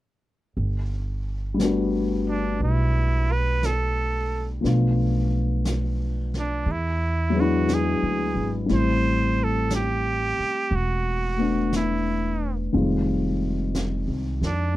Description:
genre	jazz ballad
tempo	59 BPM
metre	4/4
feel	swing 68% on 8ths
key	G major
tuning	A4 = 440 Hz
part	upright bass	bass	0.6-14.7 s	E1 to F2	-25 LUFS	right 1 dB	none
part	vintage brush drum kit	drums	0.6-14.8 s	brushed snare drum, hi-hat, snare drum	-34 LUFS	equal	none
part	dark upright piano	accompaniment	1.5-14.8 s	Eb3 to F#4	-25 LUFS	left 3 dB	none
part	trumpet with straight mute	melody	2.3-14.7 s	D4 to C5	-27 LUFS	right 3 dB	none
room	little or no reverb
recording	none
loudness	-21 LUFS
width	side -15 dB against mid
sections	0.6-14.8 A section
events	none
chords	0.6 Gmaj9; 4.6 Bm7b5; 6.7 E7; 8.7 Am9; 12.7 Fm9

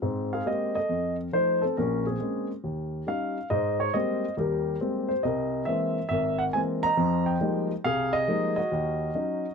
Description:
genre	solo jazz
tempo	138 BPM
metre	4/4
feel	swing 66% on 8ths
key	Ab major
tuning	A4 = 440 Hz
part	dark baby grand piano	solo	0.0-9.5 s	G#1 to Bb5	-25 LUFS	equal	none
room	light reverb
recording	close, detailed microphones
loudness	-25 LUFS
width	side -5 dB against mid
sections	0.0-3.5 A section; 3.5-9.5 B section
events	none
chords	0.0 Abmaj9; 0.9 F7; 1.8 Bbm7; 2.6 Eb7; 3.5 Abmaj9; 5.2 C7alt; 7.0 Fm11; 8.7 Ebm7

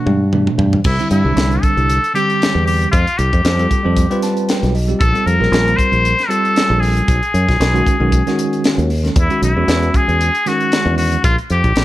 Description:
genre	electric jazz fusion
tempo	116 BPM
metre	4/4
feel	swing 54% on 16ths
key	unclear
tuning	A4 = 439 Hz
part	trumpet with straight mute	melody	0.0-11.8 s	E4 to C5	-18 LUFS	left 1 dB	slapback echo
part	bell-like tine electric piano	accompaniment	0.0-11.2 s	B2 to A5	-19 LUFS	right 1 dB	fast stereo tremolo
part	fingered electric bass	bass	0.1-11.8 s	Bb1 to G2	-16 LUFS	equal	none
part	tight funk drum kit	drums	0.1-11.8 s	crash cymbal, hi-hat, kick drum, snare drum, toms	-18 LUFS	equal	none
room	little or no reverb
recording	dark, warm production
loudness	-12 LUFS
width	side -15 dB against mid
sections	0.9-11.8 A section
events	drum fill 0.0-0.9; tine electric piano fill 4.0-5.0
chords	0.0 Gmaj7; 0.9 C69; 2.9 Fadd9; 5.0 Bbsus2; 7.1 B69; 9.2 Emaj9; 11.2 Bb5

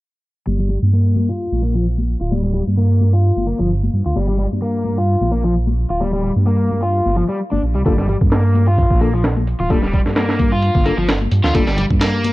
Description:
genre	breakbeat, breaks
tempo	130 BPM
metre	4/4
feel	swing 54% on 16ths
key	G minor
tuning	A4 = 440 Hz
part	overdriven semi-hollow guitar	riff	0.5-12.3 s	F3 to F4	-20 LUFS	left 1 dB	vintage 12-bit sampler grit, low-pass filter, tape echo
part	dark detuned saw bass	bass	0.5-12.3 s	D1 to G2	-17 LUFS	right 1 dB	none
part	congas	percussion	0.5-12.3 s	none	-27 LUFS	left 4 dB	none
part	mellow tine electric piano	stabs	7.9-11.6 s	Bb3 to A4	-24 LUFS	left 4 dB	tape echo
part	breakbeat sampler-style drum kit	drums	7.9-12.3 s	hi-hat, kick drum, snare drum	-17 LUFS	right 1 dB	none
room	little or no reverb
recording	low-pass filter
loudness	-14 LUFS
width	side -18 dB against mid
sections	0.5-12.3 A section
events	filter sweep on detuned saw bass 0.5-12.3; filter sweep on overdriven electric guitar 0.5-12.3; filter sweep 0.5-12.3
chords	0.5 Gm7

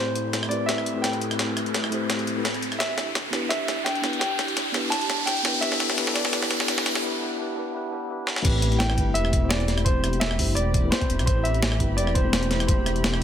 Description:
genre	liquid drum and bass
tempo	170 BPM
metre	4/4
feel	swing 53% on 16ths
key	A minor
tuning	A4 = 436 Hz
part	dark concert grand piano	melody	0.0-6.5, 8.8-13.2 s	C5 to A5	-29 LUFS	equal	dub echo
part	mellow tine electric piano	accompaniment	0.0-13.2 s	A3 to C5	-30 LUFS	left 1 dB	auto-pan, digital delay
part	warm analog pad	sustained chords	0.0-13.2 s	A2 to B5	-34 LUFS	equal	chorus
part	riser	sound effects	0.0-7.0 s	none	-29 LUFS	equal	none
part	breakbeat sampler-style drum kit	drums	0.2-13.2 s	crash cymbal, hi-hat, rim click, snare drum	-27 LUFS	equal	high-pass filter on hats, high-pass filter on snare, high-pass filter on cymbals, high-pass filter on room
part	dark detuned saw bass	bass	8.4-13.2 s	E1 to C2	-25 LUFS	equal	tube saturation
part	electronic kick drum	drums	8.4-12.8 s	none	-24 LUFS	equal	none
room	moderate lush hall reverb, RT60 1.8 s, digital ambience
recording	high-pass filter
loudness	-22 LUFS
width	side -9 dB against mid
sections	0.0-8.4 A section; 8.4-13.2 B section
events	build-up 0.0-8.4; drum fill 0.0-7.0, 8.3; riser 0.0-7.0; filter sweep on analog synth pad 0.0-8.4; break 7.0-8.4; drop 8.4-13.2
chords	0.0 Am7; 2.8 Em7; 8.4 Am7

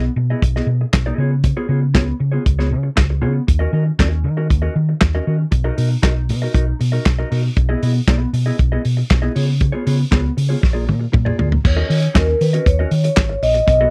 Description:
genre	disco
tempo	118 BPM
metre	4/4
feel	straight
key	Eb minor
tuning	A4 = 440 Hz
part	mellow electric guitar	accompaniment	0.0-13.9 s	Bb3 to D#5	-27 LUFS	equal	subtle chorus
part	hollow-body short-scale fingered electric bass	bass	0.0-13.8 s	Ab1 to Eb3	-20 LUFS	equal	none
part	warm soul drum kit	drums	0.4-13.8 s	crash cymbal, handclaps, hi-hat, kick drum, snare drum, toms	-20 LUFS	equal	none
part	vibraphone with soft mallets	melody	11.7-13.9 s	Bb4 to Eb5	-20 LUFS	equal	none
room	little or no reverb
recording	dry, close 1970s-style studio recording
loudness	-17 LUFS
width	mono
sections	0.0-11.7 A section; 11.7-13.9 B section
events	drum fill 10.6-11.7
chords	0.0 Emaj7/B; 1.2 Db7; 3.5 Ebm7; 5.5 Bmaj7; 7.6 Emaj7/B; 9.4 Db7; 10.6 Bb7; 11.7 Ebm7

